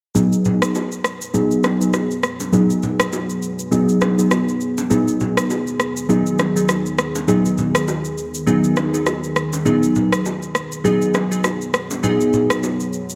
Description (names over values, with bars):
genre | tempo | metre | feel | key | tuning
afrobeats | 101 BPM | 4/4 | swing 58% on 16ths | G# minor | A4 = 439 Hz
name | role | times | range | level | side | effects
glassy digital keys | accompaniment | 0.1-12.6 s | F#3 to G#4 | -20 LUFS | equal | chorus, low-pass filter
deep dark ambient pad | sustained chords | 1.1-13.2 s | D#3 to A#4 | -28 LUFS | equal | chorus, built-in reverb, low-pass filter
electronic shaker and rim click | drums | 0.2-13.2 s | none | -25 LUFS | equal | none
congas and bongos | percussion | 0.2-12.8 s | none | -29 LUFS | equal | none
room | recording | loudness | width
moderate lush hall reverb, RT60 2.5 s | dark, warm production | -19 LUFS | mono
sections
0.2-13.2 A section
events
filter sweep 0.2-13.2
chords
0.2 G#m7; 4.9 B6; 9.7 G#m7